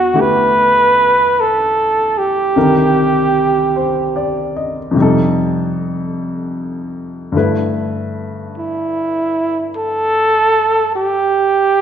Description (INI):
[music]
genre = jazz ballad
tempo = 50 BPM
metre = 4/4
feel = swing 67% on 8ths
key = G major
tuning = A4 = 439 Hz
[part]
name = warm flugelhorn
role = melody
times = 0.0-11.8 s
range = E4 to B4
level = -13 LUFS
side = right 2 dB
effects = none
[part]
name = warm baby grand piano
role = accompaniment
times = 0.0-11.8 s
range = C2 to F#5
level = -17 LUFS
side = left 2 dB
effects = none
[sound]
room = wet recital hall reverb, RT60 1.6 s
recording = recorded in a church or concert hall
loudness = -13 LUFS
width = side -8 dB against mid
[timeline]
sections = 0.0-11.8 A section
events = none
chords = 0.0 Em9; 2.6 Cm7; 5.0 F9; 7.3 G6